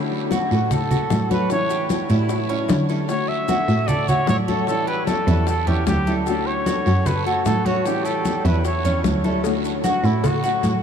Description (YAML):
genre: latin, Cuban son and guajira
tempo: 151 BPM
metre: 4/4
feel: straight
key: D major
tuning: A4 = 439 Hz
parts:
  - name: nylon-string guitar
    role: accompaniment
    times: 0.0-10.8 s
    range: D3 to F#4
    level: -26 LUFS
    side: left 3 dB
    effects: analog chorus
  - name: rich cello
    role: bass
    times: 0.0-10.8 s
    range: D2 to D3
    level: -22 LUFS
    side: right 1 dB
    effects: none
  - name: congas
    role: percussion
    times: 0.1-10.8 s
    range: none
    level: -26 LUFS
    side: right 1 dB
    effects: none
  - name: Cuban tres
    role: arpeggios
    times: 0.3-10.8 s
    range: C#4 to C#5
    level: -26 LUFS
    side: right 1 dB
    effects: analog delay
  - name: bongos and cowbell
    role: percussion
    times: 0.3-10.8 s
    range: none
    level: -30 LUFS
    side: left 8 dB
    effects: none
  - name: guiro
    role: percussion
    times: 0.3-10.8 s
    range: none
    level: -39 LUFS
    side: right 13 dB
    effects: none
  - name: maracas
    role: percussion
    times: 0.3-10.8 s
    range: none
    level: -42 LUFS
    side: left 15 dB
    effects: none
  - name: breathy trumpet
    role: melody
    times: 0.5-10.8 s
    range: E4 to E5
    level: -25 LUFS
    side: equal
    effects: analog delay
room: moderate huge ambient reverb, RT60 8.6 s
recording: dreamy mix soaked in reverb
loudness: -18 LUFS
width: side -7 dB against mid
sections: 0.0-9.4 A section; 9.4-10.8 B section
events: trumpet solo 9.4-10.8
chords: 0.0 Dmaj7; 1.5 A7; 3.1 Dmaj7; 4.7 A7; 6.3 Dmaj7; 7.9 A7; 9.4 Dmaj7